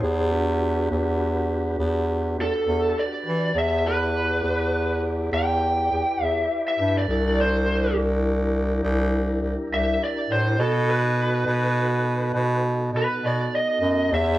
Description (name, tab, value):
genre	slow blues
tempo	68 BPM (dotted quarters)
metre	12/8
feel	straight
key	E minor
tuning	A4 = 440 Hz
part	mellow tonewheel organ	sustained chords	0.0-14.4 s	B3 to D#5	-30 LUFS	equal	slow rotary speaker
part	clear bass clarinet	bass	0.0-14.4 s	C2 to E3	-23 LUFS	equal	none
part	lead guitar through a small cranked amp	melody	2.4-14.4 s	A4 to G5	-24 LUFS	equal	overdrive
room	moderate large studio reverb, RT60 1.2 s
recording	band playing live in one room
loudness	-20 LUFS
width	side -15 dB against mid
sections	0.0-14.4 A section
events	none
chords	0.0 Em7; 7.1 C7; 10.6 B7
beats	| 0.03 0.91 1.79 2.67 | 3.56 4.44 5.32 6.20 | 7.08 7.96 8.83 9.71 | 10.59 11.47 12.34 13.22 | 14.10